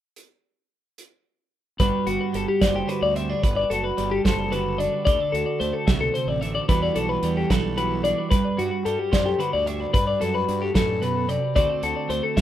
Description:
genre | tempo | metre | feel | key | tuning
math rock and midwest emo | 74 BPM (dotted quarters) | 6/8 | straight | G major | A4 = 441 Hz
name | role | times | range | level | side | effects
loose indie drum kit | drums | 0.2-12.4 s | hi-hat, kick drum, snare drum | -24 LUFS | right 1 dB | none
twelve-string electric guitar | accompaniment | 1.8-12.4 s | G2 to C5 | -27 LUFS | right 8 dB | none
twelve-string electric guitar | arpeggios | 1.8-12.4 s | F#4 to E5 | -24 LUFS | left 4 dB | digital delay
fuzz fingered electric bass | bass | 1.8-12.4 s | F#1 to G2 | -30 LUFS | equal | overdrive
room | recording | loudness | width
light reverb | rough home demo mix | -20 LUFS | side -12 dB against mid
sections
0.2-1.8 A section; 1.8-12.4 B section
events
none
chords
0.2 N.C.; 1.8 Gmaj7; 5.1 D9; 6.7 Gmaj13/B; 8.3 Gmaj7; 11.6 D7

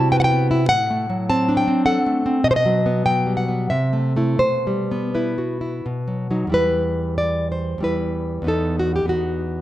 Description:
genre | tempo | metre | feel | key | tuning
romantic piece for solo classical guitar | 80-104 BPM | 3/4 | rubato | E minor | A4 = 440 Hz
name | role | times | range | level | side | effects
nylon-string guitar | solo | 0.0-9.6 s | E2 to A5 | -18 LUFS | equal | none
room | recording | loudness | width
moderate recital hall reverb, RT60 1.6 s | dark, warm production | -18 LUFS | side -14 dB against mid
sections
0.0-6.5 A section; 6.5-9.6 B section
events
none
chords
0.0 Cmaj7; 0.7 F#dim/A; 2.5 B5; 3.7 Am/C; 4.4 Em/B; 5.9 B; 6.5 Em; 8.5 B/E

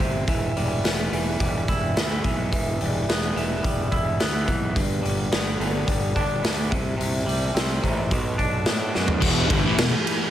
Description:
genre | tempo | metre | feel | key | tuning
quiet-loud alternative rock | 107 BPM | 4/4 | straight | E minor | A4 = 440 Hz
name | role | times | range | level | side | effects
twangy electric guitar | arpeggios | 0.0-9.2 s | G2 to E4 | -27 LUFS | right 1 dB | none
fuzz fingered electric bass | bass | 0.0-9.9 s | E1 to A2 | -27 LUFS | equal | overdrive
raw garage drum kit | drums | 0.0-10.2 s | crash cymbal, hi-hat, kick drum, ride cymbal, snare drum, toms | -24 LUFS | equal | none
string machine, violins | sustained chords | 9.2-10.3 s | E3 to B4 | -30 LUFS | equal | ensemble chorus
fuzz guitar | riff | 9.2-9.9 s | E2 to E3 | -23 LUFS | equal | distortion
room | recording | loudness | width
light reverb | none | -21 LUFS | side -11 dB against mid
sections
0.0-9.2 A section; 9.2-10.3 B section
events
drum fill 8.9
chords
0.3 Em; 4.8 G; 6.7 C5; 8.1 Bm; 9.2 Em

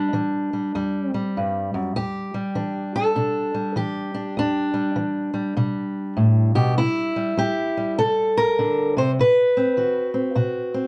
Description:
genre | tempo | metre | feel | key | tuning
acoustic country blues, solo or duo | 100 BPM | 4/4 | swing 63% on 8ths | E minor | A4 = 439 Hz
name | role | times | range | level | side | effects
fingerpicked steel-string acoustic guitar | solo | 0.0-10.9 s | E2 to C5 | -22 LUFS | equal | none
room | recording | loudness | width
moderate small room reverb, RT60 0.5 s | dark, warm production, nothing above 10.9 kHz | -22 LUFS | mono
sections
0.0-10.9 A section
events
none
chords
0.0 N.C.; 2.0 Em7; 6.8 C7; 9.2 B

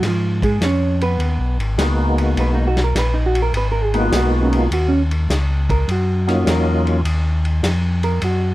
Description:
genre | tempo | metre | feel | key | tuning
soul jazz organ trio | 102 BPM | 4/4 | swing 68% on 8ths | unclear | A4 = 440 Hz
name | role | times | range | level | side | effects
hollow-body jazz guitar | accompaniment | 0.0-8.5 s | F3 to Db5 | -21 LUFS | right 2 dB | none
mellow tonewheel organ | bass | 0.0-8.5 s | Ab1 to Ab2 | -18 LUFS | equal | overdrive, chorus vibrato, slow rotary speaker
warm soul drum kit | drums | 0.0-8.4 s | hi-hat, kick drum, ride cymbal, snare drum | -25 LUFS | equal | none
percussive tonewheel organ | melody | 1.8-7.0 s | Gb3 to Gb4 | -19 LUFS | left 1 dB | slow rotary speaker, overdrive, chorus vibrato
room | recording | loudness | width
light reverb | none | -16 LUFS | side -16 dB against mid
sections
0.0-8.5 A section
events
hollow-body jazz guitar solo 0.0-8.5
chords
0.0 Abm7; 4.7 Ebm7

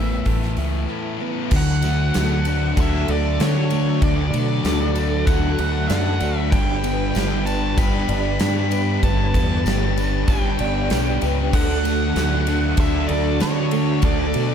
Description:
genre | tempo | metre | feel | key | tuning
rock, shoegaze and dream pop | 96 BPM | 4/4 | straight | D major | A4 = 442 Hz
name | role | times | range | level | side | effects
octave-fuzz lead guitar | melody | 0.0-14.5 s | C#5 to B5 | -28 LUFS | right 2 dB | distortion, ping-pong delay
picked twelve-string acoustic guitar | arpeggios | 0.0-14.5 s | E3 to G4 | -29 LUFS | right 1 dB | ensemble chorus, ping-pong delay
crunchy overdriven guitar | riff | 0.0-14.5 s | D3 to A4 | -27 LUFS | right 10 dB | reverse reverb
thick fuzz guitar | riff | 0.0-14.5 s | G2 to G4 | -26 LUFS | left 10 dB | distortion, lush chorus
growling fingered electric bass | bass | 0.0-14.5 s | G1 to D3 | -22 LUFS | equal | overdrive
gated 80s drum kit | drums | 0.3-14.5 s | crash cymbal, hi-hat, kick drum, ride cymbal, snare drum | -24 LUFS | equal | none
string machine, cellos | sustained chords | 1.5-14.5 s | D4 to B5 | -30 LUFS | equal | ensemble chorus
tambourine | percussion | 1.5-14.1 s | none | -42 LUFS | right 6 dB | none
overdriven electric guitar | riff | 11.5-14.5 s | D3 to D4 | -27 LUFS | right 1 dB | none
room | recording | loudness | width
light reverb | none | -18 LUFS | side -8 dB against mid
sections
0.0-1.5 A section; 1.5-14.5 B section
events
break 0.9-1.5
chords
0.0 Asus2; 1.5 D; 6.5 G; 11.5 D

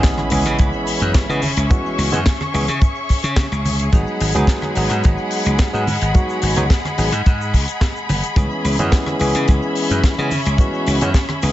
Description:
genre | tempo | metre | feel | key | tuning
nu-disco, nu disco | 108 BPM | 4/4 | straight | C# minor | A4 = 440 Hz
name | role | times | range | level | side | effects
barky tine electric piano | accompaniment | 0.0-11.5 s | E3 to C#5 | -22 LUFS | equal | digital delay
rich studio violin section | sustained chords | 0.0-11.5 s | G#3 to C#6 | -24 LUFS | left 1 dB | sidechain pumping
kick drum | drums | 0.0-11.3 s | none | -14 LUFS | equal | studio reverb
tight funk drum kit | drums | 0.0-11.5 s | hi-hat, rim click, shaker, snare drum | -25 LUFS | left 2 dB | studio reverb
tube shaker and congas | percussion | 0.0-11.4 s | none | -29 LUFS | right 1 dB | none
impact | sound effects | 0.0-1.7 s | none | -30 LUFS | equal | none
glassy slap bass | bass | 0.3-11.5 s | F#1 to C#3 | -20 LUFS | equal | none
room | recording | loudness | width
small room ambience | nothing above 7.9 kHz | -15 LUFS | side -14 dB against mid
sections
0.0-11.5 A section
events
impact 0.0-1.7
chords
0.0 C#m7; 3.9 G#m7; 8.4 C#m7

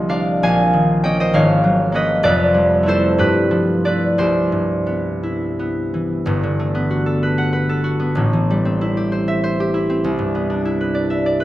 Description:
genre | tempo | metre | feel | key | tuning
classical, solo harp piece | 56-67 BPM (dotted quarters) | 6/8 | rubato | C major, G major from 6.3 s | A4 = 440 Hz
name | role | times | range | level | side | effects
concert harp | solo | 0.0-11.4 s | F1 to Ab5 | -15 LUFS | equal | none
room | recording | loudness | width
wet recital hall reverb, RT60 1.3 s | none | -15 LUFS | side -15 dB against mid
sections
0.0-6.3 A section; 6.3-11.4 B section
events
none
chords
0.4 Bbm11; 1.3 Abm11; 2.2 Fmaj9; 3.2 G13; 4.2 Cmaj7; 6.3 Gmaj9; 8.2 Am7; 10.0 Cmaj9

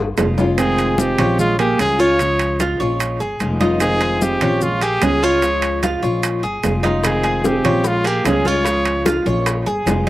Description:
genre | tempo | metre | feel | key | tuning
latin, Cuban son and guajira | 149 BPM | 4/4 | straight | unclear | A4 = 440 Hz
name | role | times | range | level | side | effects
picked old ladder-braced acoustic guitar | accompaniment | 0.0-10.1 s | C3 to F4 | -22 LUFS | left 3 dB | slapback echo
upright bass | bass | 0.0-10.1 s | F1 to Db2 | -22 LUFS | equal | none
bongos | percussion | 0.2-0.5, 7.0-10.1 s | none | -25 LUFS | left 5 dB | none
congas | percussion | 0.2-10.1 s | none | -24 LUFS | left 1 dB | none
maracas | percussion | 0.2-10.1 s | none | -33 LUFS | left 4 dB | none
timbales | percussion | 0.2-10.1 s | none | -24 LUFS | right 6 dB | slapback echo
clear trumpet | melody | 0.6-9.1 s | F4 to Db5 | -19 LUFS | equal | none
nylon-string guitar | second line | 0.6-9.1 s | Ab3 to F4 | -23 LUFS | right 4 dB | slapback echo
Cuban tres | arpeggios | 0.8-10.1 s | Eb4 to Db5 | -23 LUFS | right 2 dB | slapback echo
room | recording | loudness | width
little or no reverb | recorded outdoors, with no room sound | -15 LUFS | side -16 dB against mid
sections
0.6-10.1 A section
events
drum fill 0.0-0.6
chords
0.0 Bbm7 (rootless); 0.6 Fm7; 1.4 Bbm7; 3.8 Fm7; 4.6 Bbm7; 7.0 Fm7; 7.8 Bbm7

